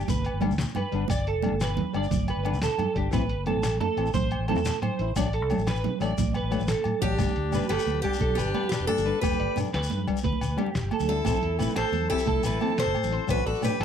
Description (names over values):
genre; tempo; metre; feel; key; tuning
highlife guitar band; 118 BPM (dotted quarters); 12/8; straight; G major; A4 = 441 Hz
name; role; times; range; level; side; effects
flamenco guitar; accompaniment; 0.0-13.7 s; E3 to E4; -32 LUFS; left 11 dB; none
electric guitar at the edge of break-up; arpeggios; 0.0-13.8 s; G4 to D5; -31 LUFS; right 5 dB; ensemble chorus, slapback echo
fingered electric bass; bass; 0.0-13.8 s; E1 to C3; -30 LUFS; left 1 dB; none
shekere; percussion; 0.0-13.7 s; none; -36 LUFS; left 5 dB; none
lo-fi sampler-style drum kit; drums; 0.1-13.8 s; hi-hat, kick drum, snare drum; -32 LUFS; left 1 dB; none
congas; percussion; 0.1-13.8 s; none; -32 LUFS; right 11 dB; none
agogo bells; percussion; 0.3-13.8 s; none; -38 LUFS; left 3 dB; none
picked steel-string acoustic guitar; melody; 7.0-13.8 s; G4 to C5; -29 LUFS; left 2 dB; none
warm trumpet; second line; 7.0-13.8 s; D4 to A4; -36 LUFS; left 10 dB; none
room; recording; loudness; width
studio ambience; dry, close 1970s-style studio recording; -24 LUFS; side -8 dB against mid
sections
0.0-7.2 A section; 7.2-13.8 B section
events
drum fill 6.3-7.2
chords
0.0 G; 3.1 Am; 5.2 D/A; 7.2 G; 11.3 Am; 13.3 D/A